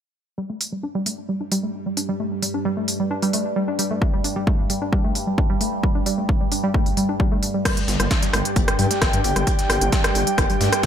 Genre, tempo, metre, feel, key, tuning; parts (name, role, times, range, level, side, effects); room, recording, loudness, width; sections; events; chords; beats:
driving peak-time techno; 132 BPM; 4/4; straight; A4 = 440 Hz
warbly dusty pluck; riff; 0.4-10.9 s; G3 to D4; -25 LUFS; equal; chorus, sidechain pumping, ping-pong delay
overtone-sweeping drone; drone; 1.3-10.9 s; G2 to G3; -28 LUFS; right 3 dB; chorus, built-in reverb, sidechain pumping
techno drum kit; drums; 0.6-10.9 s; crash cymbal, hi-hat, rim click; -24 LUFS; equal; overdrive, gated reverb
electronic kick drum; drums; 4.0-10.9 s; -21 LUFS; equal; overdrive
breakbeat sampler-style drum kit; drums; 7.7-10.9 s; hi-hat, snare drum; -30 LUFS; left 1 dB; sidechain pumping on hats, high-pass filter on hats, high-pass filter on snare, high-pass filter on room, gated reverb
airy breathy pad; texture; 7.7-10.9 s; D4 to G5; -24 LUFS; equal; chorus, sidechain pumping
gritty driven synth bass; bass; 7.9-10.9 s; G1 to G2; -23 LUFS; equal; sidechain pumping
light reverb, digital ambience; bright 1980s-style digital production; -19 LUFS; side -9 dB against mid
0.4-7.7 A section; 7.7-10.9 B section
filter sweep on synth arpeggio sound 0.4-7.7
0.4 G5
| 0.38 0.83 1.29 1.74 | 2.20 2.65 3.11 3.56 | 4.02 4.47 4.92 5.38 | 5.83 6.29 6.74 7.20 | 7.65 8.11 8.56 9.02 | 9.47 9.93 10.38 10.84